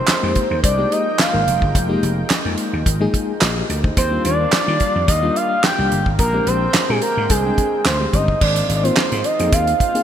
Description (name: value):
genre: early-eighties boogie funk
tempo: 108 BPM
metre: 4/4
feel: straight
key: F dorian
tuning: A4 = 440 Hz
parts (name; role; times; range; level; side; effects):
- expressive synth lead; melody; 0.0-10.0 s; Ab4 to G5; -20 LUFS; right 1 dB; chorus
- lush unison pad; sustained chords; 0.0-10.0 s; D3 to G5; -28 LUFS; equal; chorus
- vintage slap bass; bass; 0.1-9.7 s; F1 to Eb3; -21 LUFS; equal; none
- damped 70s drum kit; drums; 0.1-10.0 s; crash cymbal, handclaps, hi-hat, kick drum, snare drum; -20 LUFS; equal; gated reverb
- group handclap; percussion; 0.1-9.1 s; none; -27 LUFS; right 6 dB; none
- FM electric piano with tremolo; accompaniment; 0.2-10.0 s; G3 to G5; -25 LUFS; left 4 dB; none
room: moderate lush hall reverb, RT60 2.5 s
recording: bright 1980s-style digital production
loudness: -15 LUFS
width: side -9 dB against mid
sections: 0.0-8.4 A section; 8.4-10.0 B section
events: none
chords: 0.0 Fm11; 4.0 Ebmaj9; 6.2 Bb13; 8.4 Ab69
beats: 0.08 0.64 1.19 | 1.75 2.30 2.86 3.41 | 3.97 4.53 5.08 5.64 | 6.19 6.75 7.30 7.86 | 8.41 8.97 9.53